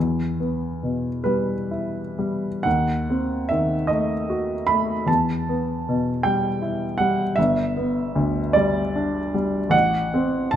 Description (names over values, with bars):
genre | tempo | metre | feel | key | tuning
classical, romantic nocturne for solo piano | 41-53 BPM (dotted quarters) | 12/8 | rubato | E minor | A4 = 439 Hz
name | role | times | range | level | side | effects
warm baby grand piano | solo | 0.0-10.6 s | G1 to B5 | -20 LUFS | equal | none
room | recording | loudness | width
moderate recital hall reverb, RT60 1.5 s | close, detailed microphones | -20 LUFS | side -10 dB against mid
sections
0.0-10.6 A section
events
none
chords
0.0 Em; 2.7 D#dim7; 5.1 Em; 7.4 G; 9.7 F#dim/A